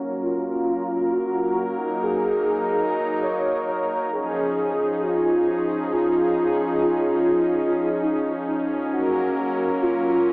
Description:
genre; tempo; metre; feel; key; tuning
synthwave; 100 BPM; 4/4; straight; Db major; A4 = 440 Hz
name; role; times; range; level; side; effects
warm velvety synth lead; melody; 0.0-10.3 s; Eb4 to Db5; -23 LUFS; equal; chorus, diffuse ambient delay
warm analog pad; sustained chords; 0.0-10.3 s; F3 to Bb4; -23 LUFS; equal; lush chorus
room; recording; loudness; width
wet lush hall reverb, RT60 2.5 s; dreamy mix soaked in reverb, small speaker sound; -20 LUFS; side -27 dB against mid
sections
0.0-4.1 A section; 4.1-10.3 B section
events
filter sweep on analog synth pad 0.0-4.1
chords
0.0 Gb; 4.1 Dbadd9; 8.9 Gb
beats
0.52 1.12 | 1.72 2.32 2.92 3.52 | 4.12 4.72 5.32 5.92 | 6.52 7.12 7.72 8.32 | 8.92 9.52 10.12

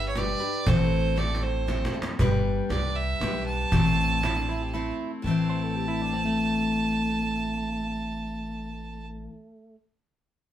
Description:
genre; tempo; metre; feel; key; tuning
honky-tonk and classic country; 118 BPM; 3/4; straight; A minor; A4 = 440 Hz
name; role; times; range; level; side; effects
clear fiddle; melody; 0.0-9.1 s; C5 to A5; -30 LUFS; right 3 dB; none
picked steel-string acoustic guitar; accompaniment; 0.0-9.4 s; A2 to C5; -29 LUFS; left 4 dB; none
upright bass; bass; 0.0-9.3 s; G1 to C2; -31 LUFS; right 1 dB; none
cajon; drums; 0.2-5.1 s; none; -29 LUFS; right 1 dB; none
electric guitar at the edge of break-up; second line; 4.2-9.8 s; A3 to C5; -31 LUFS; right 1 dB; none
room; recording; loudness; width
moderate studio reverb, RT60 0.5 s; band playing live in one room; -24 LUFS; side -11 dB against mid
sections
0.0-2.2 A section; 2.2-5.2 B section; 5.2-8.3 C section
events
drum fill 1.2-2.2; break 4.7-5.2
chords
0.0 G; 0.7 Am; 2.2 G; 3.7 Am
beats
0.16 | 0.67 1.18 1.68 | 2.19 2.70 3.21 | 3.72 4.23 4.73 | 5.24 5.75 6.26 | 6.77 7.28 7.79

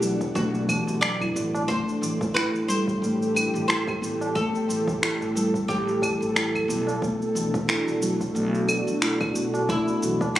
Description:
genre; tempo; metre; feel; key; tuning
organic downtempo; 90 BPM; 4/4; swing 56% on 16ths; A dorian; A4 = 441 Hz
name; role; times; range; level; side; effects
oud; melody; 0.0-10.4 s; E4 to D5; -30 LUFS; equal; tape echo, shimmer reverb
warm analog pad; sustained chords; 0.0-10.4 s; A2 to F#5; -29 LUFS; right 1 dB; chorus, sidechain pumping, shimmer reverb
kalimba; arpeggios; 0.0-10.4 s; E3 to A4; -27 LUFS; equal; digital delay
upright bass; bass; 0.0-10.4 s; A1 to B1; -34 LUFS; equal; none
electronic cabasa, claves and finger snaps; drums; 0.0-10.4 s; none; -28 LUFS; equal; overdrive
electronic kick drum; drums; 0.2-10.3 s; none; -31 LUFS; equal; overdrive
tabla; percussion; 0.7-10.3 s; none; -35 LUFS; right 2 dB; none
room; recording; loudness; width
moderate lush hall reverb, RT60 1.8 s; recorded on a phone in the room, studio reverb; -22 LUFS; side -13 dB against mid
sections
0.0-10.4 A section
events
none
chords
0.0 Bm7; 1.7 Am7; 7.0 Bm7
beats
0.36 1.02 | 1.69 2.36 3.02 3.69 | 4.36 5.02 5.69 6.36 | 7.02 7.69 8.36 9.02 | 9.69 10.36

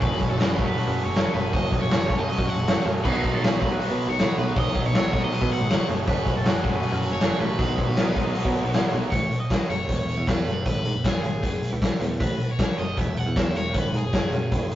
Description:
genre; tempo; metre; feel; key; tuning
indie rock; 158 BPM; 4/4; straight; B mixolydian; A4 = 440 Hz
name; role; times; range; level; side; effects
cranked stack guitar; melody; 0.0-14.8 s; G#4 to F#5; -32 LUFS; equal; overdrive, phaser
fuzz guitar; riff; 0.0-9.1 s; F#2 to F#4; -28 LUFS; right 1 dB; distortion
picked electric bass; bass; 0.0-14.7 s; E1 to B2; -29 LUFS; equal; none
raw garage drum kit; drums; 0.0-14.8 s; crash cymbal, hi-hat, kick drum, snare drum; -23 LUFS; equal; none
room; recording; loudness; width
light reverb; rough rehearsal-room recording, tube saturation, nothing above 7.6 kHz; -21 LUFS; side -13 dB against mid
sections
0.0-9.1 A section; 9.1-14.8 B section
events
none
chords
0.0 F#m; 3.0 Badd9; 5.9 F#m; 7.6 B; 9.1 A; 9.9 Esus2; 10.7 G#m; 11.4 F#sus2; 12.2 A; 13.0 C#madd11/E; 13.7 F#sus24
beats
| 0.02 0.40 0.78 1.15 | 1.53 1.91 2.29 2.67 | 3.04 3.42 3.80 4.18 | 4.56 4.94 5.32 5.70 | 6.08 6.46 6.83 7.21 | 7.59 7.98 8.36 8.74 | 9.12 9.51 9.89 10.27 | 10.66 11.04 11.43 11.81 | 12.20 12.59 12.97 13.36 | 13.75 14.13 14.52

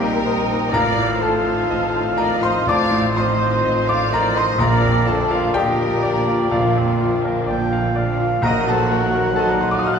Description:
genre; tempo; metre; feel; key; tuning
classical, romantic movement for piano and orchestra; 62 BPM; 4/4; rubato; Bb major; A4 = 439 Hz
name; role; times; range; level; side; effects
clear concert grand piano; melody; 0.0-10.0 s; A1 to Gb6; -21 LUFS; left 2 dB; none
muted chamber violin section; melody; 0.0-10.0 s; D4 to Gb4; -32 LUFS; left 3 dB; none
clear clarinet; second line; 0.0-10.0 s; F4 to Gb5; -27 LUFS; left 2 dB; none
large flute ensemble; second line; 0.0-10.0 s; F5 to Gb6; -27 LUFS; right 1 dB; none
mellow cor anglais; second line; 0.0-10.0 s; C5 to G5; -25 LUFS; right 3 dB; none
muted chamber violin section; second line; 0.0-10.0 s; A4 to A5; -26 LUFS; left 3 dB; none
muted symphonic viola section; accompaniment; 0.0-10.0 s; F3 to Eb4; -28 LUFS; right 1 dB; none
dark French horn section; sustained chords; 0.0-10.0 s; D3 to Gb4; -26 LUFS; left 3 dB; none
muted chamber cello section; bass; 0.0-10.0 s; A2 to Bb2; -28 LUFS; right 4 dB; none
muted symphonic double bass section; bass; 0.0-10.0 s; A1 to Bb1; -26 LUFS; right 5 dB; none
timpani; percussion; 4.6-9.8 s; Bb2; -33 LUFS; equal; none
room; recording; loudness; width
wet recital hall reverb, RT60 1.3 s; recorded in a church or concert hall; -16 LUFS; side -6 dB against mid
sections
0.0-10.0 A section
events
none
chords
0.0 Cm7/Bb; 0.7 F7/A; 4.6 Bb; 8.4 Ebm/Bb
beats
| 0.73 1.70 2.68 3.65 | 4.60 5.55 6.51 7.47 | 8.43 9.38

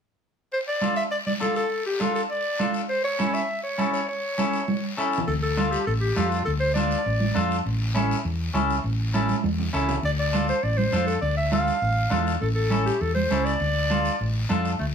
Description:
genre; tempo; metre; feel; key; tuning
latin, cumbia; 202 BPM; 4/4; straight; D harmonic minor; A4 = 442 Hz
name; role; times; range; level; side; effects
clear clarinet; melody; 0.5-7.5, 10.1-14.9 s; A3 to F5; -26 LUFS; equal; plate reverb
guiro; percussion; 0.5-14.9 s; none; -36 LUFS; left 4 dB; none
clean electric guitar; accompaniment; 0.8-14.7 s; C#4 to A4; -27 LUFS; left 1 dB; none
congas; percussion; 0.8-14.6 s; none; -29 LUFS; right 3 dB; none
hollow-body short-scale fingered electric bass; bass; 5.3-14.9 s; A1 to F2; -26 LUFS; equal; none
room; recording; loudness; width
moderate studio ambience, RT60 0.5 s; heard from further back in the room; -22 LUFS; side -7 dB against mid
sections
0.5-5.3 A section; 5.3-14.8 B section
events
drum fill 4.7-5.3, 9.3-10.0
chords
0.5 Dm; 2.9 A; 5.3 Dm; 7.7 A; 10.0 Dm; 12.4 A; 13.6 Dm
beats
| 0.52 0.81 1.11 1.41 | 1.71 2.00 2.30 2.60 | 2.90 3.19 3.49 3.79 | 4.09 4.38 4.68 4.98 | 5.28 5.57 5.87 6.17 | 6.46 6.76 7.06 7.36 | 7.65 7.95 8.25 8.54 | 8.84 9.14 9.44 9.73 | 10.03 10.33 10.63 10.92 | 11.22 11.52 11.82 12.12 | 12.41 12.71 13.01 13.31 | 13.60 13.90 14.20 14.50 | 14.79

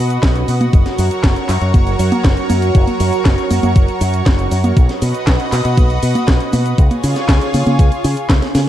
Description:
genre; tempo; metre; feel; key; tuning
italo disco; 119 BPM; 4/4; straight; unclear; A4 = 441 Hz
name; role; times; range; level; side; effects
lush unison pad; sustained chords; 0.0-8.7 s; Gb3 to Db6; -19 LUFS; right 1 dB; chorus, vintage 12-bit sampler grit
fingered electric bass with an envelope filter; bass; 0.0-8.7 s; Gb1 to Db3; -17 LUFS; equal; tube saturation
house drum kit; drums; 0.1-8.6 s; cabasa, congas, handclaps, hi-hat, snare drum; -19 LUFS; equal; overdrive
electronic kick drum; drums; 0.2-8.4 s; none; -12 LUFS; equal; overdrive
room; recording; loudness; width
little or no reverb; dark, warm production; -12 LUFS; side -12 dB against mid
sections
0.0-8.7 A section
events
drum fill 8.4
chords
0.0 B; 0.7 Gb; 4.8 B; 6.8 Db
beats
0.23 | 0.73 1.24 1.74 2.25 | 2.75 3.25 3.76 4.26 | 4.77 5.27 5.78 6.28 | 6.78 7.29 7.79 8.30

